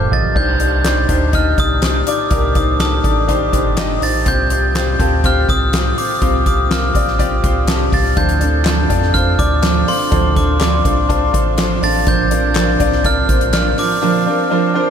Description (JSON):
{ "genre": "piano-driven pop", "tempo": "123 BPM", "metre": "4/4", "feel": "straight", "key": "unclear", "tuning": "A4 = 441 Hz", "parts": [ { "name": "glockenspiel with hard plastic mallets", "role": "melody", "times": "0.0-14.9 s", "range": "C6 to A6", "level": "-19 LUFS", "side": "right 1 dB", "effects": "ping-pong delay" }, { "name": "clear baby grand piano", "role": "accompaniment", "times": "0.0-14.9 s", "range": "G2 to Eb5", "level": "-19 LUFS", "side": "left 3 dB", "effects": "wide subtle chorus" }, { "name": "round analog bass", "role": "bass", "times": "0.0-13.7 s", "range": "G1 to F2", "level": "-18 LUFS", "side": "equal", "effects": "none" }, { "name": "soft-mallet drum kit", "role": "drums", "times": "0.1-13.9 s", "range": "crash cymbal, handclaps, hi-hat, kick drum, snare drum, toms", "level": "-18 LUFS", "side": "equal", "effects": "none" }, { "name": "picked steel-string acoustic guitar", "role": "riff", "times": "8.2-14.9 s", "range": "Bb2 to Bb4", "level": "-21 LUFS", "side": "right 9 dB", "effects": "wide subtle chorus" }, { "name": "group handclap", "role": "percussion", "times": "8.6-13.7 s", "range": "none", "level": "-34 LUFS", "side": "left 10 dB", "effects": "none" } ], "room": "moderate huge ambient reverb, RT60 6.9 s", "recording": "dreamy mix soaked in reverb", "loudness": "-13 LUFS", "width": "side -8 dB against mid", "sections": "0.4-14.9 A section", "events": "drum fill 0.0-0.4", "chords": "0.4 Cmadd9; 4.3 Fsus2/C; 8.2 Dm7; 12.1 Bbadd9", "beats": "| 0.36 0.85 1.34 1.82 | 2.31 2.80 3.29 3.78 | 4.26 4.75 5.24 5.73 | 6.22 6.71 7.19 7.68 | 8.17 8.66 9.14 9.63 | 10.12 10.61 11.10 11.58 | 12.07 12.56 13.05 13.54 | 14.02 14.51" }